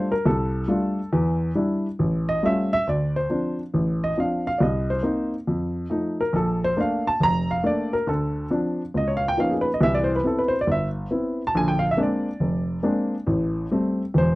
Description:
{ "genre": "solo jazz", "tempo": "138 BPM", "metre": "4/4", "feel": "swing 66% on 8ths", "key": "D minor", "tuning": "A4 = 440 Hz", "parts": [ { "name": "dark baby grand piano", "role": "solo", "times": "0.0-14.4 s", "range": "E1 to Bb5", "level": "-21 LUFS", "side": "equal", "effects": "none" } ], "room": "light reverb", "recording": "dry, close 1970s-style studio recording", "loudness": "-21 LUFS", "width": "side -19 dB against mid", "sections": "0.0-2.9 A section; 2.9-14.4 A section", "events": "grand piano solo 0.0-14.4", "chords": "0.0 F69; 1.1 Em7; 2.0 A7b13; 2.9 Dm7; 4.6 Cm7; 5.5 F7; 6.3 Bbmaj7; 8.1 Dm7; 8.9 C#13; 9.8 Cmaj7; 11.5 Bb9; 13.3 Am7", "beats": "0.25 0.69 | 1.12 1.56 1.99 2.43 | 2.86 3.30 3.73 4.17 | 4.60 5.04 5.47 5.91 | 6.34 6.77 7.21 7.64 | 8.08 8.51 8.95 9.38 | 9.81 10.25 10.68 11.11 | 11.55 11.98 12.41 12.85 | 13.28 13.71 14.15" }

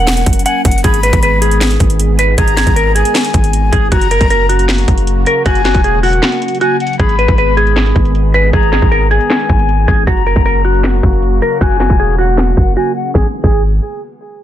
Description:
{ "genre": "hip hop, trap", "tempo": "156 BPM", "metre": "4/4", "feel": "half-time", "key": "G# minor", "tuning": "A4 = 440 Hz", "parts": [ { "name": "semi-hollow electric guitar", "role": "melody", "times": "0.0-13.6 s", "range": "F#4 to F#5", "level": "-15 LUFS", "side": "equal", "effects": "wide subtle chorus, low-pass filter, tape echo" }, { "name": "breathy mellow silver concert flute", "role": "second line", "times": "0.0-13.6 s", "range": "F#5 to B5", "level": "-20 LUFS", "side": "left 10 dB", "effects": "tape echo" }, { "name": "sweeping resonant pad", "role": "sustained chords", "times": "0.0-13.3 s", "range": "C#3 to A#4", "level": "-21 LUFS", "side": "right 1 dB", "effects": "wide subtle chorus" }, { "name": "long sustained 808-style bass", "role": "bass", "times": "0.0-13.8 s", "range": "E1 to G#1", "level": "-13 LUFS", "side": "equal", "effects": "none" }, { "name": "trap drum kit", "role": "drums", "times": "0.1-13.5 s", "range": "crash cymbal, handclaps, hi-hat, kick drum, snare drum", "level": "-14 LUFS", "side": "equal", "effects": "overdrive" } ], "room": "little or no reverb", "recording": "dense, heavily limited modern master, low-pass filter", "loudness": "-9 LUFS", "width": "side -11 dB against mid", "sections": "0.8-13.1 A section; 13.1-14.4 B section", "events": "filter sweep 0.8-13.1; break 6.2-7.0, 12.8-13.1", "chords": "0.0 F#; 0.8 G#m; 3.9 F#; 7.0 G#m; 10.1 F#; 13.1 G#m", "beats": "0.07 0.46 | 0.84 1.23 1.61 2.00 | 2.38 2.77 3.15 3.53 | 3.92 4.30 4.69 5.07 | 5.46 5.84 6.23 6.61 | 7.00 7.38 7.76 8.15 | 8.53 8.92 9.30 9.69 | 10.07 10.46 10.84 11.23 | 11.61 11.99 12.38 12.77 | 13.15 13.53" }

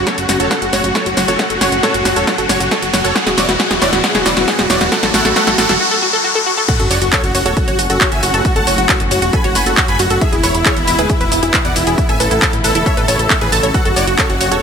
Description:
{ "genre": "uplifting trance", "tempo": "136 BPM", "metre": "4/4", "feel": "straight", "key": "F# minor", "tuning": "A4 = 442 Hz", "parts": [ { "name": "dense compressed supersaw", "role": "melody", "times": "0.0-14.6 s", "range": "E4 to B5", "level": "-17 LUFS", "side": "equal", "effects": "sidechain pumping, ping-pong delay" }, { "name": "muted studio string section", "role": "sustained chords", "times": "0.0-14.6 s", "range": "G#2 to F#4", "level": "-22 LUFS", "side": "left 2 dB", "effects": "sidechain pumping" }, { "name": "fat analog bass", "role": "bass", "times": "0.0-14.6 s", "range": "D1 to A1", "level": "-22 LUFS", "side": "equal", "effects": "sidechain pumping" }, { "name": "riser, noise sweep and sub drop", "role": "sound effects", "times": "0.0-8.4 s", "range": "none", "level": "-20 LUFS", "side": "equal", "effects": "none" }, { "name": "tight sequenced synth", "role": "arpeggios", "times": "0.1-14.5 s", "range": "E4 to A5", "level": "-20 LUFS", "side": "right 1 dB", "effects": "chorus, sidechain pumping, ping-pong delay" }, { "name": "electronic kick drum", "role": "drums", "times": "0.1-14.3 s", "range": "none", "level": "-19 LUFS", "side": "equal", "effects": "high-pass filter on kick, high-pass filter on room" }, { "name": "techno drum kit", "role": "drums", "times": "0.1-14.6 s", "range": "crash cymbal, handclaps, hi-hat, shaker, snare drum", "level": "-17 LUFS", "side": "equal", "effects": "sidechain pumping on hats, sidechain pumping on perc, sidechain pumping on cymbals" } ], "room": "moderate lush hall reverb, RT60 1.9 s, digital ambience", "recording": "none", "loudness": "-11 LUFS", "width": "side -6 dB against mid", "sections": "0.0-6.7 A section; 6.7-14.6 B section", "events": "build-up 0.0-6.7; drum fill 0.0-5.8; riser 0.0-6.7; filter sweep on synth arpeggio sound 0.0-6.7; noise sweep 4.9-6.7; drop 6.7-14.6; impact 6.7-8.4", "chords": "0.0 F#m; 3.2 E; 4.9 Aadd9; 6.7 F#m; 10.2 E; 12.0 Aadd9; 13.7 F#m", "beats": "0.07 0.51 0.95 | 1.39 1.83 2.27 2.71 | 3.16 3.60 4.04 4.48 | 4.92 5.36 5.80 6.24 | 6.68 7.13 7.57 8.01 | 8.45 8.89 9.33 9.77 | 10.21 10.66 11.10 11.54 | 11.98 12.42 12.86 13.30 | 13.74 14.19" }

